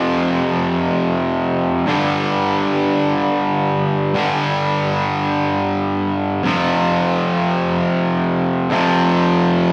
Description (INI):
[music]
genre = rock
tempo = free time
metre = none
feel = none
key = unclear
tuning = A4 = 440 Hz
[part]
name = cranked stack guitar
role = solo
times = 0.0-9.7 s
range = F2 to G3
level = -18 LUFS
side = equal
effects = overdrive, slapback echo
[sound]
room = moderate lush hall reverb, RT60 2.7 s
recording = live gig heard through the venue's PA, club reverb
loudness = -18 LUFS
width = mono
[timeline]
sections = 0.0-9.7 A section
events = none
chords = 0.0 F5; 1.9 G5; 6.4 F5